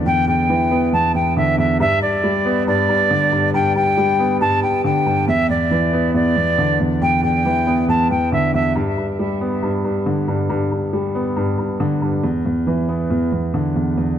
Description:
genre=hip hop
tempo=138 BPM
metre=4/4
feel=half-time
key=unclear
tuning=A4 = 442 Hz
part: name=warm concert grand piano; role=accompaniment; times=0.0-14.2 s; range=E2 to B3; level=-18 LUFS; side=equal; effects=none
part: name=silver concert flute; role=melody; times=0.1-8.7 s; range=D5 to A5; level=-18 LUFS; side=equal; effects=ping-pong delay
room=light reverb, small room ambience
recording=dark, warm production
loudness=-16 LUFS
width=side -9 dB against mid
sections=0.0-8.8 A section; 8.8-14.2 B section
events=break 8.8-14.2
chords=0.0 Em7; 1.8 G; 5.3 Em7; 8.8 G; 12.2 E5

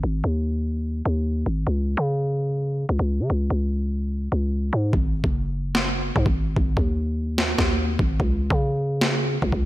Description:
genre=hip hop, trap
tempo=147 BPM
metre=4/4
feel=half-time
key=unclear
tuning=A4 = 440 Hz
part: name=growling 808-style bass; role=bass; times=0.0-9.7 s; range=F#1 to C#3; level=-22 LUFS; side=equal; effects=none
part: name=boom bap sampler-style drum kit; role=drums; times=4.9-9.6 s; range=kick drum, snare drum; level=-22 LUFS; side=equal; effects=overdrive
room=light reverb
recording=none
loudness=-21 LUFS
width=side -16 dB against mid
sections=0.0-4.9 A section; 4.9-9.7 B section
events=hi-hats muted 4.9-9.7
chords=none

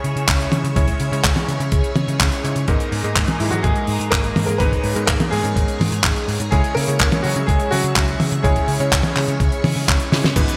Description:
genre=italo disco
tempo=125 BPM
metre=4/4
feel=straight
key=unclear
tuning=A4 = 440 Hz
part: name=string machine, full ensemble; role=sustained chords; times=0.0-10.6 s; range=G#3 to D#6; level=-30 LUFS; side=equal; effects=phaser, ensemble chorus
part: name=clear electric grand piano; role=stabs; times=0.0-10.6 s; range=G#2 to A#5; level=-28 LUFS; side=equal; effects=low-pass filter, delay
part: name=vintage muted picked electric bass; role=bass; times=0.0-10.4 s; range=G#1 to C#3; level=-25 LUFS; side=equal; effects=none
part: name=damped 70s drum kit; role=drums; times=0.0-10.6 s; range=cabasa, crash cymbal, handclaps, hi-hat, snare drum, toms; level=-23 LUFS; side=equal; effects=gated reverb
part: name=electronic kick drum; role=drums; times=0.3-10.5 s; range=none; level=-23 LUFS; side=equal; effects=none
part: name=bright grand piano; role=melody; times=3.4-9.8 s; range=E3 to B4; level=-26 LUFS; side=equal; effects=digital delay
room=moderate lush hall reverb, RT60 1.8 s, studio ambience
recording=bright 1980s-style digital production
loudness=-18 LUFS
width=mono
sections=0.0-10.4 A section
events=drum fill 10.1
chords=0.0 C#m; 2.7 G#madd9; 6.5 C#m

